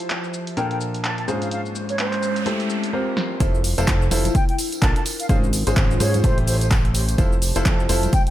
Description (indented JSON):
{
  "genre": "piano house",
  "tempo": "127 BPM",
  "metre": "4/4",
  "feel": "swing 59% on 16ths",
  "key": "F major",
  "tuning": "A4 = 440 Hz",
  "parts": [
    { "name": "clear grand piano", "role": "riff", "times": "0.0-8.1 s", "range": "Ab2 to C5", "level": "-26 LUFS", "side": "left 1 dB", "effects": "sidechain pumping, digital delay" },
    { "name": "punchy analog drum machine", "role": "drums", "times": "0.0-8.3 s", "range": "handclaps, hi-hat, shaker, snare drum", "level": "-27 LUFS", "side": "equal", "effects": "overdrive, low-pass filter on hats, studio reverb, low-pass filter on perc, low-pass filter on snare" },
    { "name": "warbly tape-like pad", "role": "texture", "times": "0.0-8.3 s", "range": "F3 to C6", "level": "-30 LUFS", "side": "equal", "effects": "chorus, built-in reverb, phaser, sidechain pumping" },
    { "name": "mellow concert flute", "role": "melody", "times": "0.6-8.3 s", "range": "C5 to A5", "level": "-29 LUFS", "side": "left 1 dB", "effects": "digital delay" },
    { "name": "noise sweep", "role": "sound effects", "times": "1.8-3.4 s", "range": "none", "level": "-32 LUFS", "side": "right 4 dB", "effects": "none" },
    { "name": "fat analog bass", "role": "bass", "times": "3.4-8.1 s", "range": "F1 to Ab2", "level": "-22 LUFS", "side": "equal", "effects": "sidechain pumping" },
    { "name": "electronic kick drum", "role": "drums", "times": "3.4-8.2 s", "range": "none", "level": "-19 LUFS", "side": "equal", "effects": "overdrive, studio reverb" },
    { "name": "tambourine and congas", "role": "percussion", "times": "3.4-8.2 s", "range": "none", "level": "-32 LUFS", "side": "right 2 dB", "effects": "none" }
  ],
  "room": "little or no reverb",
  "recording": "none",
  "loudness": "-18 LUFS",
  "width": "side -13 dB against mid",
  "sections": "0.0-3.4 A section; 3.4-8.3 B section",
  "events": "noise sweep 1.8-3.4; drum fill 3.2; drop 3.4-8.3",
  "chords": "0.0 Fmaj7; 0.6 Bbmaj7; 1.3 Dbmaj7/Ab; 2.5 Am7; 2.9 C7sus4; 3.4 Fmaj7; 4.3 Bbmaj7; 5.1 Dbmaj7/Ab; 6.2 Am7; 7.2 Fmaj7"
}